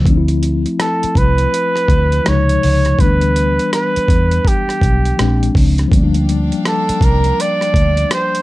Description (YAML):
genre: R&B, neo-soul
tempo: 82 BPM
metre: 4/4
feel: swing 62% on 16ths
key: D dorian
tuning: A4 = 440 Hz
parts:
  - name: mellow tine electric piano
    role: accompaniment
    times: 0.0-8.4 s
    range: B#2 to E4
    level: -19 LUFS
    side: left 3 dB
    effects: medium stereo tremolo
  - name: clear chamber string section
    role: sustained chords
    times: 0.0, 5.9-8.4 s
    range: D4 to G5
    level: -31 LUFS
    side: left 2 dB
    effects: none
  - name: vintage muted fingered electric bass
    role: bass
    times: 0.0-8.0 s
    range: Bb1 to E2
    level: -15 LUFS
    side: equal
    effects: none
  - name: dusty soul sampler-style drum kit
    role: drums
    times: 0.1-8.4 s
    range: hi-hat, kick drum, rim click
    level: -17 LUFS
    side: equal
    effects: overdrive
  - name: clear flugelhorn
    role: melody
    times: 0.8-8.4 s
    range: G4 to D5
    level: -17 LUFS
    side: right 2 dB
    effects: none
room: little or no reverb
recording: dark, warm production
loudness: -12 LUFS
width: side -17 dB against mid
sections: 0.1-8.4 A section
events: none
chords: 0.1 Dm13; 2.3 C#maj7; 3.0 G6; 5.2 Bb7; 5.9 C9sus4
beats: | 0.06 0.79 1.53 2.26 | 2.99 3.72 4.45 5.18 | 5.92 6.65 7.38 8.11